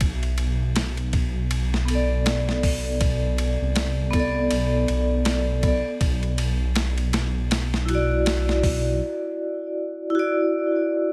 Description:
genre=trip hop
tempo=80 BPM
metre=4/4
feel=swing 59% on 16ths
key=B phrygian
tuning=A4 = 440 Hz
part: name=dark detuned saw bass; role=bass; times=0.0-9.0 s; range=B1 to C2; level=-26 LUFS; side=equal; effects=tube saturation
part: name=boom bap sampler-style drum kit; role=drums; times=0.0-8.8 s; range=hi-hat, kick drum, ride cymbal, snare drum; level=-29 LUFS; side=equal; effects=studio reverb
part: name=vibraphone with medium hard mallets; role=accompaniment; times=1.9-11.1 s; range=B3 to D5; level=-26 LUFS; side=equal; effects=harmonic tremolo, low-pass filter, tape echo
room=digital ambience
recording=none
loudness=-23 LUFS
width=mono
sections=0.0-11.1 A section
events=none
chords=0.0 Bm7; 6.0 Dadd9/B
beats=| 0.01 0.76 1.51 2.26 | 3.01 3.76 4.51 5.26 | 6.01 6.76 7.51 8.26 | 9.01 9.76 10.51

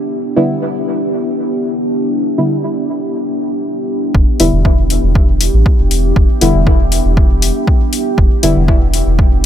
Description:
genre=dub techno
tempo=119 BPM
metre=4/4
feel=straight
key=E minor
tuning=A4 = 440 Hz
part: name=deep dark ambient pad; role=sustained chords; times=0.0-9.5 s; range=B3 to G4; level=-18 LUFS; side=equal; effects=chorus, built-in reverb, sidechain pumping
part: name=deep mellow chord stab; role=stabs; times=0.4-8.6 s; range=D3 to E4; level=-18 LUFS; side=left 1 dB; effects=chorus, phaser, sidechain pumping, dub echo
part: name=soft dub sub bass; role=bass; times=4.1-9.5 s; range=E1 to A1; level=-14 LUFS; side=equal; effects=sidechain pumping
part: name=electronic kick drum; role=drums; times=4.1-9.3 s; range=none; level=-11 LUFS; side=equal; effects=overdrive
part: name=electronic hi-hat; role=drums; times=4.4-9.0 s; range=none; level=-18 LUFS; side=left 6 dB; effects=overdrive
room=little or no reverb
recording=none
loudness=-11 LUFS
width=side -10 dB against mid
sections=0.0-4.1 A section; 4.1-9.5 B section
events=none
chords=0.0 Em7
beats=| 0.11 0.62 1.12 1.62 | 2.13 2.63 3.14 3.64 | 4.14 4.65 5.15 5.66 | 6.16 6.67 7.17 7.67 | 8.18 8.68 9.19

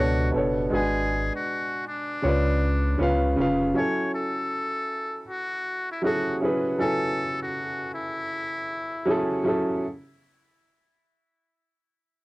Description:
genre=lo-fi hip hop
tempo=79 BPM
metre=4/4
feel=swing 65% on 16ths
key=F# minor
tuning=A4 = 441 Hz
part: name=trumpet with metal mute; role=melody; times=0.0-9.3 s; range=D4 to C#5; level=-30 LUFS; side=left 1 dB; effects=cassette tape
part: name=warm upright piano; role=accompaniment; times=0.0-9.8 s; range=B2 to G#5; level=-25 LUFS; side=equal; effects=cassette tape
part: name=saturated sub bass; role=bass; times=0.0-3.7 s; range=E#1 to C#2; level=-26 LUFS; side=equal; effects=transformer saturation
room=moderate booth ambience, RT60 0.2 s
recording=home recording on cassette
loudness=-23 LUFS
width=side -21 dB against mid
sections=0.0-9.8 A section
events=none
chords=0.0 Bm7; 0.7 G#m7b5; 2.2 C#7b9; 3.8 F#m9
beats=| 0.71 1.47 2.23 2.99 | 3.75 4.51 5.27 6.03 | 6.79 7.55 8.31 9.07

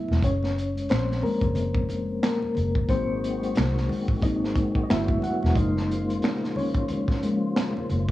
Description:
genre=R&B, neo-soul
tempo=90 BPM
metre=4/4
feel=swing 59% on 16ths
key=unclear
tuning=A4 = 440 Hz
part: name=reed electric piano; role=accompaniment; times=0.0-8.1 s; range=F3 to F#5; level=-27 LUFS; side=left 2 dB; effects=fast tremolo
part: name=vintage muted fingered electric bass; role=bass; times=0.1-8.1 s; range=Fb1 to C2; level=-27 LUFS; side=equal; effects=none
part: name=crunchy breakbeat drum kit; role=drums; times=0.1-8.1 s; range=finger snaps, hi-hat, kick drum, snare drum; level=-27 LUFS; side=equal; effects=none
part: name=congas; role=percussion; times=0.1-8.1 s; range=none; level=-36 LUFS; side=right 2 dB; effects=none
part: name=percussive tonewheel organ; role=sustained chords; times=2.9-8.1 s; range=Db3 to Gb4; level=-32 LUFS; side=right 1 dB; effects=slow rotary speaker, overdrive, chorus vibrato
room=light reverb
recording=worn, warbling old tape, cassette tape, warbly pitch drift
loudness=-22 LUFS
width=side -15 dB against mid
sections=0.0-8.1 A section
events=reed electric piano solo 0.0-8.1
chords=0.2 Gbmaj7; 2.9 Ab7; 4.9 Gmaj7; 5.6 Gbmaj7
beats=| 0.22 0.89 1.55 2.22 | 2.89 3.55 4.22 4.89 | 5.55 6.22 6.89 7.55

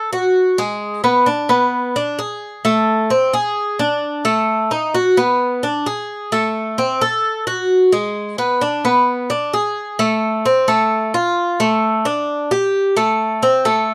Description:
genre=latin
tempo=131 BPM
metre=4/4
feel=straight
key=A minor from 10.0 s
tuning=A4 = 440 Hz
part: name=Cuban tres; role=solo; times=0.0-13.9 s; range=G#3 to A4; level=-17 LUFS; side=equal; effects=none
room=light reverb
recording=dry, close 1970s-style studio recording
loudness=-17 LUFS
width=mono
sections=0.0-10.0 A section; 10.0-13.9 B section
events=none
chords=none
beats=0.35 | 0.81 1.27 1.73 2.19 | 2.65 3.11 3.57 4.03 | 4.49 4.95 5.41 5.86 | 6.32 6.78 7.24 7.70 | 8.16 8.62 9.08 9.53 | 9.99 10.45 10.91 11.37 | 11.83 12.29 12.75 13.21 | 13.66

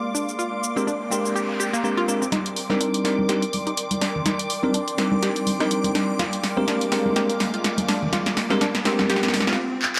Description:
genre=deep house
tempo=124 BPM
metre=4/4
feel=swing 56% on 16ths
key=C minor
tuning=A4 = 441 Hz
part: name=warm analog pad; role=sustained chords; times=0.0-9.5 s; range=Ab3 to C6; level=-33 LUFS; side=equal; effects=chorus
part: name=string machine, violins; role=texture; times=0.0-9.6 s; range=D6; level=-37 LUFS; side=equal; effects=ensemble chorus
part: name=analog pluck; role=arpeggios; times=0.1-9.6 s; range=Bb3 to G4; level=-32 LUFS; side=equal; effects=chorus, tape echo
part: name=punchy analog drum machine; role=drums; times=0.2-10.0 s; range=handclaps, hi-hat, rim click, shaker, snare drum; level=-28 LUFS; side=equal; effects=none
part: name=noise sweep and riser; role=sound effects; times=1.0-9.6 s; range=none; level=-36 LUFS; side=equal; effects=none
part: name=bell-like tine electric piano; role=stabs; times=0.8-9.4 s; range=G3 to Bb4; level=-27 LUFS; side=equal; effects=tape echo
part: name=congas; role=percussion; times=2.3-9.4 s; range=none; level=-32 LUFS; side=equal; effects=none
room=moderate plate reverb, RT60 2.0 s, digital ambience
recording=none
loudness=-23 LUFS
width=mono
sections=0.0-2.3 A section; 2.3-10.0 B section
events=noise sweep 1.0-2.3; build-up 2.3-10.0; drum fill 2.3-9.6, 9.8; filter sweep on synth arpeggio sound 2.3-10.0; stop 9.6-10.0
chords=0.0 Bb13; 2.3 Cm9; 6.2 Bb13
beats=| 0.39 0.87 1.36 1.84 | 2.32 2.81 3.29 3.77 | 4.26 4.74 5.23 5.71 | 6.19 6.68 7.16 7.65 | 8.13 8.61 9.10 9.58

